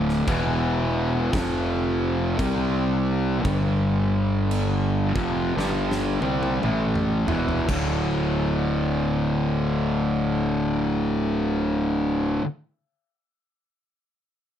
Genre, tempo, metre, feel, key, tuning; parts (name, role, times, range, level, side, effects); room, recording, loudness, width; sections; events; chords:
stoner and doom metal; 57 BPM; 4/4; swing 61% on 8ths; D minor; A4 = 439 Hz
fuzz guitar; riff; 0.0-12.5 s; D2 to C4; -23 LUFS; equal; distortion
fuzz fingered electric bass; bass; 0.0-12.4 s; D1 to C2; -27 LUFS; equal; overdrive
big rock drum kit; drums; 0.1-8.0 s; crash cymbal, kick drum, snare drum, toms; -31 LUFS; right 1 dB
light reverb; -21 LUFS; side -10 dB against mid
0.0-7.7 A section; 7.7-11.9 B section
drum fill 5.6-7.7
0.3 E5; 1.3 F5; 2.4 C5; 3.4 G5; 5.0 Dm; 7.7 D5